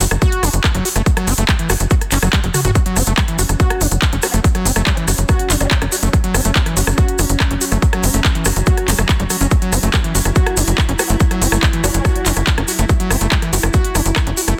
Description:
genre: psychedelic trance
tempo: 142 BPM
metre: 4/4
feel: straight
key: F# minor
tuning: A4 = 441 Hz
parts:
  - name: screaming distorted acid line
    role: riff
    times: 0.0-14.5 s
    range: E3 to F#4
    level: -25 LUFS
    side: equal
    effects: distortion, chorus, sidechain pumping, dub echo
  - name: tight sequencer bass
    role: bass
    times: 0.0-14.5 s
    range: F#1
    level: -19 LUFS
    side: equal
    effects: none
  - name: techno drum kit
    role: drums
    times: 0.0-14.6 s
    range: handclaps, hi-hat, rim click, toms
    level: -22 LUFS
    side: equal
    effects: small room ambience
  - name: tube shaker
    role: percussion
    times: 0.0-14.6 s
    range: none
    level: -25 LUFS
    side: equal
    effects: none
  - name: electronic kick drum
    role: drums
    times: 0.2-14.2 s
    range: none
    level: -18 LUFS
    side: equal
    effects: small room ambience
  - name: evolving wavetable pad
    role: sustained chords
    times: 3.4-14.6 s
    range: F#3 to E4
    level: -29 LUFS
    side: equal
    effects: chorus, built-in reverb, sidechain pumping
  - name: vowel-sweep wobble bass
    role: second line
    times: 4.2-5.8, 11.0-12.2 s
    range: B3 to C#4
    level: -33 LUFS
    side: equal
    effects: none
room: light reverb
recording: dense, heavily limited modern master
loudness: -16 LUFS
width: mono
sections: 0.0-14.6 A section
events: drum fill 2.3-2.8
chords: 0.0 F#5

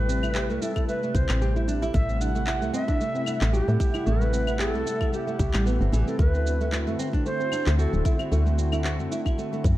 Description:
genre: organic downtempo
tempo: 113 BPM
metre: 4/4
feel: swing 55% on 16ths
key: A dorian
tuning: A4 = 442 Hz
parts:
  - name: Native American-style cedar flute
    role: melody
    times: 0.0-8.2 s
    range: G4 to F#5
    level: -31 LUFS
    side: right 1 dB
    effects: tape echo
  - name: warm analog pad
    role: sustained chords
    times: 0.0-9.8 s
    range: C3 to F#5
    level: -32 LUFS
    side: left 1 dB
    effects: chorus, sidechain pumping
  - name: nylon-string guitar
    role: arpeggios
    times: 0.0-9.8 s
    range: E3 to G4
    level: -30 LUFS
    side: right 2 dB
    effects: tape echo
  - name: woody FM bass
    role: bass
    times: 0.0-9.8 s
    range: D1 to A2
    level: -24 LUFS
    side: equal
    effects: none
  - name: electronic shaker, claves and handclaps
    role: drums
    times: 0.1-9.8 s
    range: none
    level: -34 LUFS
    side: left 1 dB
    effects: none
  - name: electronic kick drum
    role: drums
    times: 0.8-9.8 s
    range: none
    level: -24 LUFS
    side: equal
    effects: none
room: light reverb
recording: dark, warm production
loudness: -22 LUFS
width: side -15 dB against mid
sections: 0.0-9.8 A section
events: none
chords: 0.0 Am7; 6.2 D9

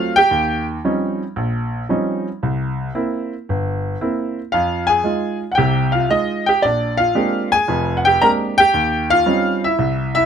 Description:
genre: solo jazz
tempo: 114 BPM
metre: 4/4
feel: swing 69% on 8ths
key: unclear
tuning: A4 = 440 Hz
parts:
  - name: clear baby grand piano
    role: solo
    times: 0.0-10.3 s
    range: F1 to Bb5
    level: -16 LUFS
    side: equal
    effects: none
room: little or no reverb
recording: close, detailed microphones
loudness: -16 LUFS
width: side -8 dB against mid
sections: 0.0-10.3 A section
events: none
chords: 0.3 Eb13; 2.4 C7; 4.5 Fm7; 6.6 Bb13; 8.7 Eb13

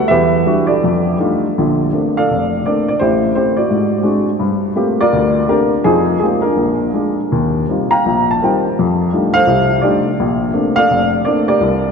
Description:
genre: solo jazz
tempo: 167 BPM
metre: 4/4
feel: swing 64% on 8ths, rubato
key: Bb major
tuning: A4 = 444 Hz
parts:
  - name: warm upright piano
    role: solo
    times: 0.0-11.9 s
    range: F1 to Bb5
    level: -12 LUFS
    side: equal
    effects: none
room: wet cathedral reverb, RT60 4.6 s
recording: recorded in a church or concert hall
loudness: -12 LUFS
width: side -6 dB against mid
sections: 0.0-1.6 A section; 1.6-11.9 B section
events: none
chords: 0.1 Em9; 0.8 F13; 1.6 Bbmaj9; 3.0 Am7; 3.7 Ab7#11; 4.4 Gm11; 5.8 Fm11; 6.6 Bb7; 7.3 Eb69; 8.8 F13; 10.2 Bbmaj9

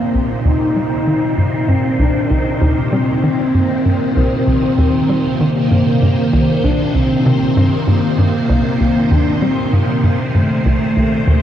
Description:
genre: ambient, sequencer-driven space music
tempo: 97 BPM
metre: 4/4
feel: straight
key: C dorian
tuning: A4 = 440 Hz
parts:
  - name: breathy flute-like synth lead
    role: melody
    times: 0.0-11.4 s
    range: A3 to Eb4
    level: -18 LUFS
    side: equal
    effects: ensemble chorus, ping-pong delay
  - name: phased string machine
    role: sustained chords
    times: 0.0-11.4 s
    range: Bb2 to C5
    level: -17 LUFS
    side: equal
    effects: ensemble chorus, phaser
  - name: hollow square pluck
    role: riff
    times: 0.1-11.4 s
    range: C2 to G3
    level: -17 LUFS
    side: equal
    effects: chorus
room: wet huge ambient reverb, RT60 8.1 s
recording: worn, warbling old tape, cassette tape, warbly pitch drift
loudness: -12 LUFS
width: side -10 dB against mid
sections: 0.0-11.4 A section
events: none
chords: 0.0 Cm7

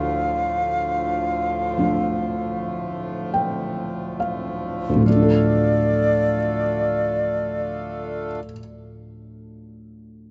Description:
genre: celtic folk, Celtic slow air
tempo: 34-47 BPM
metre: 4/4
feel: rubato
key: D minor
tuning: A4 = 441 Hz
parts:
  - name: wooden flute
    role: melody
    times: 0.0-8.4 s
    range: D5 to F5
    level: -26 LUFS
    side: equal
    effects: none
  - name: felt-muted upright piano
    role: accompaniment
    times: 0.0-10.3 s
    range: D2 to G5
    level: -26 LUFS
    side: equal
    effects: none
  - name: hand-pumped harmonium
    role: sustained chords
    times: 0.0-8.4 s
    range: D2 to F4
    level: -32 LUFS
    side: equal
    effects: none
room: light reverb, studio reverb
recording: rough home demo mix, nothing above 7.9 kHz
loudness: -22 LUFS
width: mono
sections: 0.0-5.1 A section; 5.1-10.3 B section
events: slowing down 0.0-5.1; felt piano fill 2.5-5.1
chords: 0.0 Dm

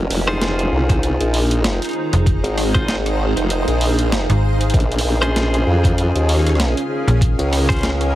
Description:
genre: glitch hop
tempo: 97 BPM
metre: 4/4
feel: swing 56% on 16ths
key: F minor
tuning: A4 = 439 Hz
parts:
  - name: formant-sweep wobble bass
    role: bass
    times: 0.0-8.2 s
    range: F1 to F2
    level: -18 LUFS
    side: equal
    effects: chorus
  - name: granular cloud pad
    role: texture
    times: 0.0-8.2 s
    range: Db4 to F5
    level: -24 LUFS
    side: right 1 dB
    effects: built-in reverb, sidechain pumping
  - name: boom bap sampler-style drum kit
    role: drums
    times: 0.1-8.1 s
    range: hi-hat, rim click, snare drum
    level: -24 LUFS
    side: equal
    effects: overdrive
  - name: clean electric guitar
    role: stabs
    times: 0.3-7.9 s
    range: Db4 to C5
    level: -23 LUFS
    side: left 1 dB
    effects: sidechain pumping, digital delay
  - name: electronic kick drum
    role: drums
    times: 0.9-7.8 s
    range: none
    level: -17 LUFS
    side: equal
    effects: overdrive
  - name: slap-like FM bass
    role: bass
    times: 2.1-7.4 s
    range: F1 to Bb1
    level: -16 LUFS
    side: equal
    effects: none
room: light reverb, digital ambience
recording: heavily compressed radio sound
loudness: -15 LUFS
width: side -14 dB against mid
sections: 0.0-8.2 A section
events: none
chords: 0.0 Fm7; 4.7 Bbm7

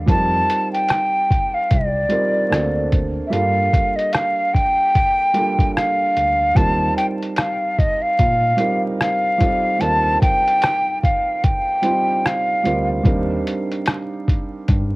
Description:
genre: lo-fi hip hop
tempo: 74 BPM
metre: 4/4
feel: swing 58% on 16ths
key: unclear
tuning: A4 = 441 Hz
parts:
  - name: felt-muted upright piano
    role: accompaniment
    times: 0.0-15.0 s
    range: G3 to C5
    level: -24 LUFS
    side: right 2 dB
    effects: cassette tape, low-pass filter
  - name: tine electric piano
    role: bass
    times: 0.0-15.0 s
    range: C2 to Bb2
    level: -24 LUFS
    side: equal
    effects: fast stereo tremolo
  - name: breathy mellow silver concert flute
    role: melody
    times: 0.1-12.9 s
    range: D5 to A5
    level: -18 LUFS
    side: equal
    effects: low-pass filter, cassette tape, tape echo
  - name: lo-fi sampler-style drum kit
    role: drums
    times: 0.1-14.9 s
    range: hi-hat, kick drum, rim click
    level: -19 LUFS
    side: equal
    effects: cassette tape
room: moderate small room ambience, RT60 0.5 s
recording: home recording on cassette, vinyl crackle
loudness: -16 LUFS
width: side -22 dB against mid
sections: 0.0-6.6 A section; 6.6-15.0 B section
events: none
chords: 0.1 F7sus4; 2.5 D7b13; 3.3 Gm7; 6.6 Eb69; 13.1 Cm9/Eb

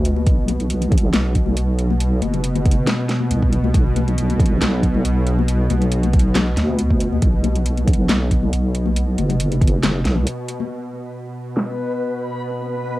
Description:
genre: deep dubstep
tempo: 138 BPM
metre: 4/4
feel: swing 54% on 16ths, half-time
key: B phrygian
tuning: A4 = 440 Hz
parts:
  - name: bowed-like drone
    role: sustained chords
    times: 0.0-13.0 s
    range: B2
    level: -24 LUFS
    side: equal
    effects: built-in reverb, cassette tape
  - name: deep soft wobble bass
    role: bass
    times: 0.0-10.3 s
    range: F#1 to D2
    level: -19 LUFS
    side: equal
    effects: chorus
  - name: dubstep drum kit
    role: drums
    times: 0.0-11.7 s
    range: handclaps, hi-hat, snare drum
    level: -23 LUFS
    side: equal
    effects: low-pass filter on snare, cassette tape, low-pass filter on hats, low-pass filter on cymbals
  - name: congas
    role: percussion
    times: 0.2-10.7 s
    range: none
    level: -26 LUFS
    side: left 8 dB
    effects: dub echo
  - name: electronic kick drum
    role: drums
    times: 0.3-9.7 s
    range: none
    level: -17 LUFS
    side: equal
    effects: cassette tape
  - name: backwards swelling texture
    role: texture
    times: 11.2-13.0 s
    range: B3 to B4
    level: -27 LUFS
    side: left 1 dB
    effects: built-in reverb, cassette tape
room: light reverb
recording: home recording on cassette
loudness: -16 LUFS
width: side -17 dB against mid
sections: 0.0-10.7 A section; 10.7-13.0 B section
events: break 10.3-10.7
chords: 0.0 B5; 10.7 N.C.

